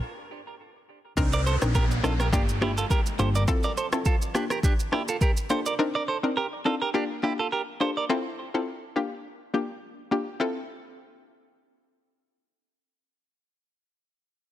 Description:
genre	afrobeats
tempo	104 BPM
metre	4/4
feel	swing 55% on 16ths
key	F major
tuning	A4 = 444 Hz
part	analog pluck	accompaniment	1.2-13.6 s	Bb3 to Bb4	-29 LUFS	left 3 dB	chorus
part	hollow-body short-scale fingered electric bass	bass	1.2-3.4 s	G1 to C2	-26 LUFS	equal	none
part	afro-pop drum kit	drums	1.2-5.8 s	kick drum, rim click, shaker	-26 LUFS	equal	soft clipping on snare
part	downlifter	sound effects	1.2-5.8 s	none	-37 LUFS	right 1 dB	none
part	direct-recorded clean electric guitar	riff	1.3-8.0 s	D4 to D5	-29 LUFS	right 4 dB	tape echo
room	light reverb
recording	dense, heavily limited modern master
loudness	-24 LUFS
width	side -12 dB against mid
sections	0.0-1.2 A section; 1.2-10.4 B section; 10.4-12.7 C section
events	break 0.0-1.2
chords	0.0 N.C.; 1.2 Cm9; 2.3 Gm7; 3.5 Fmaj7; 4.3 Bb6; 5.8 Cm9; 6.9 Gm7; 8.1 Fmaj7; 9.0 Bb6; 10.4 Fmaj7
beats	0.02 0.60 | 1.17 1.75 2.33 2.90 | 3.48 4.06 4.63 5.21 | 5.79 6.37 6.94 7.52 | 8.10 8.67 9.25 9.83 | 10.40 10.98 11.56 12.13

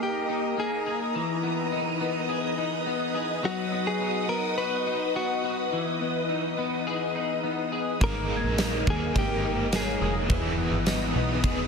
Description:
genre	dream pop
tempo	105 BPM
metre	4/4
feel	straight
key	unclear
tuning	A4 = 441 Hz
part	direct-recorded clean electric guitar	melody	0.0-10.1 s	F#4 to B4	-33 LUFS	left 2 dB	ping-pong delay
part	string machine, cellos	sustained chords	0.0-11.7 s	Bb4 to Eb6	-31 LUFS	equal	phaser, ensemble chorus
part	electric guitar at the edge of break-up	arpeggios	0.0-11.7 s	E3 to Ab4	-30 LUFS	left 3 dB	analog chorus, ping-pong delay
part	crunchy overdriven guitar	accompaniment	8.0-11.7 s	E3 to Ab4	-32 LUFS	right 2 dB	tremolo, lush chorus
part	plucky analog bass	bass	8.0-11.7 s	E1 to Eb2	-30 LUFS	equal	none
part	huge arena drum kit	drums	8.0-11.6 s	kick drum, ride cymbal, snare drum, tambourine	-28 LUFS	equal	soft clipping on kick
part	worn celesta	texture	8.4-11.7 s	B4 to Ab6	-41 LUFS	left 2 dB	none
room	light reverb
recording	dense, heavily limited modern master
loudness	-25 LUFS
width	side -5 dB against mid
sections	0.0-11.7 A section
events	none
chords	0.0 Absus2; 1.2 Emaj7; 3.4 B; 5.7 Emaj7; 8.0 Absus2; 10.3 Emaj7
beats	0.01 0.58 | 1.15 1.72 2.29 2.87 | 3.44 4.01 4.58 5.15 | 5.72 6.29 6.87 7.44 | 8.01 8.58 9.15 9.72 | 10.29 10.87 11.44

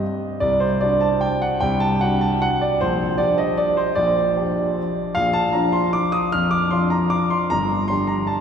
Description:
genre	classical, piano waltz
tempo	152 BPM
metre	3/4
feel	uneven beats, rubato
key	G minor, Bb major from 5.2 s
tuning	A4 = 441 Hz
part	warm concert grand piano	solo	0.0-8.4 s	G1 to F6	-18 LUFS	equal	none
room	wet cathedral reverb, RT60 5.3 s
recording	heard from further back in the room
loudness	-18 LUFS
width	side -7 dB against mid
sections	0.0-8.4 A section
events	none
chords	0.4 D7/C; 2.8 Gm/Bb; 5.2 Bb; 7.5 Gm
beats	0.01 | 0.42 0.82 1.23 | 1.62 2.02 2.42 | 2.81 3.19 3.58 | 3.97 4.37 4.77 | 5.16 5.55 5.95 | 6.34 6.72 7.12 | 7.51 7.90 8.28

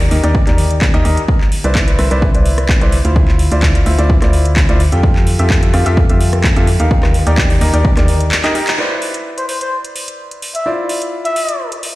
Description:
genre	piano house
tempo	128 BPM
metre	4/4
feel	straight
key	C major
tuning	A4 = 440 Hz
part	clear concert grand piano	riff	0.0-12.0 s	Eb4 to G5	-19 LUFS	equal	sidechain pumping, digital delay
part	organ-like FM bass	bass	0.0-8.3 s	C2 to F2	-14 LUFS	equal	sidechain pumping
part	house drum kit	drums	0.0-11.9 s	handclaps, hi-hat, rim click	-21 LUFS	equal	overdrive
part	electronic kick drum	drums	0.3-7.9 s	none	-14 LUFS	equal	overdrive
part	breathy trumpet	melody	9.4-11.7 s	C5 to E5	-20 LUFS	left 1 dB	digital delay
room	light reverb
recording	played on a big sound system in a bare room, stone room reverb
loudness	-11 LUFS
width	side -18 dB against mid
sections	0.0-8.8 A section; 8.8-12.0 B section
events	drum fill 8.4-8.8; band accent 8.7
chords	0.0 Ebmaj7; 1.3 Cmaj9; 3.2 Dm9; 4.8 Fmaj9; 6.7 Ebmaj7; 8.8 Cmaj9; 10.7 Dm9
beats	0.35 0.81 | 1.28 1.75 2.22 2.69 | 3.16 3.63 4.10 4.57 | 5.03 5.50 5.97 6.44 | 6.91 7.38 7.85 8.31 | 8.78 9.25 9.72 10.19 | 10.66 11.13 11.60

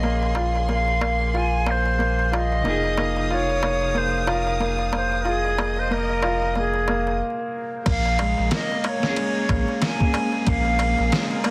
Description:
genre	trip hop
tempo	92 BPM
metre	4/4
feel	swing 58% on 16ths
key	Bb minor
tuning	A4 = 440 Hz
part	silver concert flute	melody	0.0-11.5 s	Ab4 to Ab5	-28 LUFS	equal	tape echo
part	mellow electric guitar	accompaniment	0.0-11.5 s	C3 to Bb4	-32 LUFS	equal	harmonic tremolo, tape echo
part	rich studio violin section	sustained chords	0.0-11.5 s	Bb3 to Eb6	-36 LUFS	equal	none
part	felt-muted upright piano	arpeggios	0.0-11.5 s	Ab3 to F4	-29 LUFS	equal	digital delay
part	round analog bass	bass	0.0-11.1 s	F1 to Bb1	-28 LUFS	equal	none
part	darbuka	percussion	0.0-11.5 s	none	-34 LUFS	equal	none
part	trip hop sampler-style drum kit	drums	7.9-11.5 s	crash cymbal, kick drum, ride cymbal, snare drum	-28 LUFS	equal	none
room	light reverb, small room ambience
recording	dense, heavily limited modern master, vinyl crackle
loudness	-22 LUFS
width	mono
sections	0.0-7.9 A section; 7.9-11.5 B section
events	break 7.2-7.9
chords	0.0 Bbm9; 2.6 Fm7; 7.9 Bbm9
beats	| 0.04 0.69 1.34 1.99 | 2.65 3.30 3.95 4.60 | 5.25 5.91 6.56 7.21 | 7.86 8.52 9.17 9.82 | 10.47 11.12

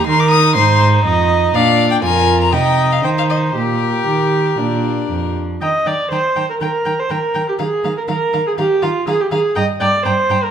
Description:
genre	quick classical-period movement for string quartet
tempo	121 BPM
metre	4/4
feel	straight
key	Eb major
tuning	A4 = 440 Hz
part	warm violin	melody	0.0-10.4 s	Bb4 to Eb6	-20 LUFS	left 8 dB	none
part	dark violin	second line	0.0-10.4 s	D4 to G5	-22 LUFS	left 3 dB	none
part	rich viola	accompaniment	0.0-10.5 s	F4 to Eb5	-17 LUFS	right 2 dB	none
part	dark cello	bass	0.0-10.4 s	F2 to Eb3	-18 LUFS	right 3 dB	none
room	moderate recital hall reverb, RT60 1.4 s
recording	none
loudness	-13 LUFS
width	side -8 dB against mid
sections	0.0-5.6 A section; 5.6-10.5 B section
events	none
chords	0.0 Eb5; 0.6 Fm/Ab; 1.6 Bb; 2.5 Cm; 3.6 Eb/Bb; 4.6 Bb; 5.6 Eb; 7.6 Bb5/Eb; 9.6 Gmadd11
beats	0.07 0.56 1.06 | 1.55 2.04 2.54 3.04 | 3.56 4.08 4.59 5.11 | 5.62 6.11 6.61 7.10 | 7.59 8.09 8.59 9.08 | 9.57 10.06

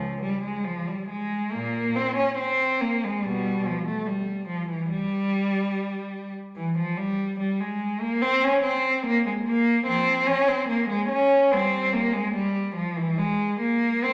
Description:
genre	classical, baroque-style suite movement for unaccompanied cello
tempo	72 BPM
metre	4/4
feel	rubato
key	unclear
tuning	A4 = 440 Hz
part	rich cello	solo	0.0-14.1 s	Db2 to Db4	-25 LUFS	equal	none
room	wet recital hall reverb, RT60 1.6 s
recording	none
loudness	-25 LUFS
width	mono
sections	0.0-14.1 A section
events	none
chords	none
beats	0.65 1.52 2.38 | 3.24 4.07 4.91 5.73 | 6.56 7.38 8.20 9.03 | 9.85 10.67 11.49 12.33 | 13.18 14.04

